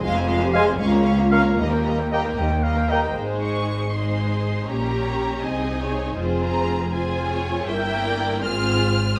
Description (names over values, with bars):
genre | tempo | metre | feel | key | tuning
classical, dramatic, fast romantic movement for symphony orchestra | 79 BPM (dotted quarters) | 6/8 | rubato | Ab major | A4 = 440 Hz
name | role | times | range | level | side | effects
warm symphonic violin section | melody | 0.0-9.2 s | G5 to F6 | -32 LUFS | equal | none
warm symphonic violin section | second line | 0.0-9.2 s | G4 to F5 | -32 LUFS | equal | none
rich studio viola section | accompaniment | 0.0-9.2 s | G3 to G4 | -31 LUFS | equal | none
dark French horn section | sustained chords | 0.0-2.4 s | Bb3 to Ab4 | -27 LUFS | equal | none
rich symphonic cello section | bass | 0.0-9.2 s | Db2 to C3 | -28 LUFS | equal | none
rich symphonic double bass section | bass | 0.0-9.2 s | F1 to Eb2 | -29 LUFS | equal | none
warm clarinet | second line | 0.5-3.2 s | Eb5 to G5 | -32 LUFS | equal | none
mellow bassoon | accompaniment | 0.5-3.0 s | Ab3 to Bb3 | -33 LUFS | equal | none
dark cor anglais | second line | 0.6-3.0 s | F5 to Ab5 | -30 LUFS | equal | none
mellow hollow flute section | second line | 0.6-3.0 s | Bb5 to C6 | -35 LUFS | equal | none
room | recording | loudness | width
wet recital hall reverb, RT60 1.5 s | none | -22 LUFS | mono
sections
0.0-3.2 A section; 3.2-9.2 B section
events
none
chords
0.0 Fm; 0.8 Bbm/Db; 1.6 Eb; 3.2 Ab; 4.7 Gdim/Bb; 5.4 Ab/C; 6.2 Fm; 7.7 Edim/G; 8.4 Fm/Ab